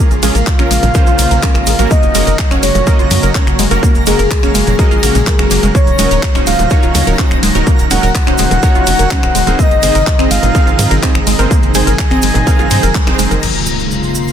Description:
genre	progressive house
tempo	125 BPM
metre	4/4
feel	straight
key	Bb minor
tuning	A4 = 440 Hz
part	airy breathy pad	sustained chords	0.0-14.3 s	C3 to F5	-21 LUFS	left 1 dB	chorus, sidechain pumping
part	wide unison pluck	arpeggios	0.0-13.4 s	Bb2 to Bb4	-20 LUFS	right 1 dB	sidechain pumping, dub echo
part	supersaw stab	stabs	0.0-13.4 s	Bb3 to F5	-19 LUFS	right 4 dB	sidechain pumping, dub echo
part	twinkling granular texture	texture	0.1-14.3 s	Bb5 to C6	-26 LUFS	equal	built-in reverb, sidechain pumping
part	tight sequencer bass	bass	0.1-14.3 s	Eb1 to Ab2	-16 LUFS	equal	sidechain pumping
part	deep house drum kit	drums	0.1-13.5 s	crash cymbal, finger snaps, handclaps, hi-hat, ride cymbal	-19 LUFS	left 2 dB	overdrive
part	cabasa	percussion	0.1-14.3 s	none	-25 LUFS	right 6 dB	none
part	soft octave-layered synth lead	melody	0.2-13.3 s	Ab4 to Ab5	-18 LUFS	left 2 dB	chorus, sidechain pumping, dub echo
part	soft synth bell	second line	0.2-13.3 s	Ab4 to Ab5	-25 LUFS	equal	none
part	electronic kick drum	drums	0.5-13.0 s	none	-12 LUFS	equal	overdrive
part	bongos and congas	percussion	0.8-13.4 s	none	-25 LUFS	right 3 dB	none
part	impact	sound effects	13.4-14.3 s	none	-21 LUFS	equal	none
room	little or no reverb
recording	dense, heavily limited modern master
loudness	-9 LUFS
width	side -9 dB against mid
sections	0.0-13.4 A section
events	drop 0.0-13.4; band accent 12.9; impact 13.4-14.3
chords	0.0 Bbm7; 1.9 Gb; 5.7 Ebm7; 9.6 Ab; 13.4 Bbm7

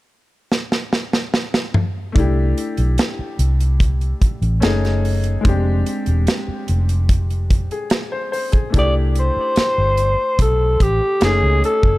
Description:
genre	lush 1970s-style soul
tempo	73 BPM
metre	4/4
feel	straight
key	C major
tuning	A4 = 440 Hz
part	modern studio drum kit	drums	0.5-12.0 s	hi-hat, kick drum, snare drum, toms	-18 LUFS	equal	none
part	clear grand piano	accompaniment	2.1-12.0 s	Ab3 to Ab5	-24 LUFS	left 3 dB	none
part	vintage muted fingered electric bass	bass	2.2-12.0 s	E1 to C#2	-17 LUFS	equal	none
part	growling alto saxophone	melody	8.8-12.0 s	G4 to D5	-17 LUFS	equal	analog delay
room	studio ambience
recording	dark, warm production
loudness	-16 LUFS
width	side -18 dB against mid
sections	0.0-2.2 A section; 2.2-8.7 B section; 8.7-12.0 C section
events	drum fill 0.5-2.2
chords	0.0 N.C.; 2.2 C69; 4.6 F#m6; 5.5 Fm6; 8.7 C69; 11.2 F#m6

